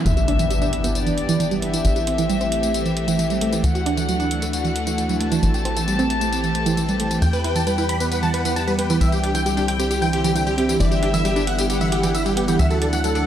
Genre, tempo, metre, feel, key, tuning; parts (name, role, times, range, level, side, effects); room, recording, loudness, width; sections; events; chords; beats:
uplifting trance; 134 BPM; 4/4; straight; G major; A4 = 440 Hz
rich chamber violin section; second line; 0.1-13.3 s; D5 to A5; -27 LUFS; left 4 dB; vintage 12-bit sampler grit, digital delay
analog pluck; arpeggios; 0.1-13.2 s; E3 to B4; -23 LUFS; right 4 dB; chorus, tape echo
tight sequencer bass; bass; 0.1-13.3 s; G1 to E2; -24 LUFS; equal
electronic hi-hat and tambourine; drums; 0.1-13.2 s; -29 LUFS; left 2 dB
impact; sound effects; 0.1-1.8 s; -24 LUFS; left 1 dB
big supersaw lead; melody; 7.2-13.2 s; G4 to B5; -24 LUFS; equal; tape echo
bright baby grand piano; second line; 7.2-13.2 s; G4 to B5; -32 LUFS; left 2 dB
moderate lush hall reverb, RT60 1.8 s, digital ambience; dark, warm production; -18 LUFS; side -10 dB against mid
0.1-13.3 A section
impact 0.1-1.8; filter sweep on synth pluck 0.1-13.3
0.1 G6; 1.8 Am7; 3.6 Dadd9; 5.4 Am7; 7.2 Em; 9.0 Cadd9; 10.8 G6; 12.6 Dadd9
| 0.06 0.50 0.95 1.40 | 1.85 2.29 2.74 3.19 | 3.64 4.09 4.53 4.98 | 5.43 5.88 6.33 6.77 | 7.22 7.67 8.12 8.56 | 9.01 9.46 9.91 10.36 | 10.80 11.25 11.70 12.15 | 12.59 13.04